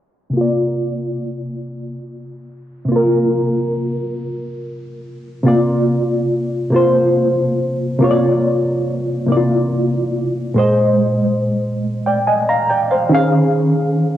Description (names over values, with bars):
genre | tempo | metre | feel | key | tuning
R&B | 47 BPM (dotted quarters) | 6/8 | straight | C minor | A4 = 441 Hz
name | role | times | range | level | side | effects
reed electric piano | solo | 0.3-14.2 s | Bb2 to Bb5 | -15 LUFS | equal | phaser, cassette tape
room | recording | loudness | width
moderate spring reverb, RT60 2.9 s | home recording on cassette, low-pass filter | -14 LUFS | side -12 dB against mid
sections
0.3-5.5 A section; 5.5-14.2 B section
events
filter sweep 0.3-5.5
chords
0.3 C9sus4; 10.6 Bb9sus4; 13.1 Eb9sus4